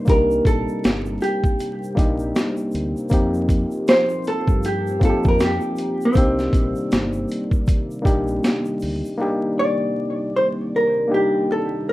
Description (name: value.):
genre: lo-fi hip hop.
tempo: 79 BPM.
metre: 4/4.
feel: swing 59% on 16ths.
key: C dorian.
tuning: A4 = 442 Hz.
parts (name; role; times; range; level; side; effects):
vintage hollow-body jazz guitar; melody; 0.0-11.9 s; C4 to D5; -21 LUFS; equal; none.
overdriven reed electric piano; accompaniment; 0.0-11.9 s; Bb3 to Bb4; -24 LUFS; left 1 dB; cassette tape.
dark analog pad; sustained chords; 0.0-11.9 s; C3 to D5; -30 LUFS; equal; chorus.
deep dub fingered electric bass; bass; 0.1-9.0 s; G1 to G2; -27 LUFS; equal; none.
boom bap sampler-style drum kit; drums; 0.1-9.0 s; hi-hat, kick drum, snare drum; -19 LUFS; equal; none.
egg shaker; percussion; 0.1-9.2 s; none; -51 LUFS; right 3 dB; none.
room: moderate studio reverb, RT60 0.6 s.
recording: rough home demo mix, vinyl crackle, faint mains hum.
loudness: -18 LUFS.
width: side -17 dB against mid.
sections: 0.0-9.2 A section; 9.2-11.9 B section.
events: none.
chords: 0.0 Cm9; 3.1 F9sus4; 6.2 Cm9.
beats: | 0.08 0.84 1.60 2.36 | 3.12 3.88 4.64 5.39 | 6.16 6.91 7.67 8.43 | 9.19 9.95 10.71 11.47.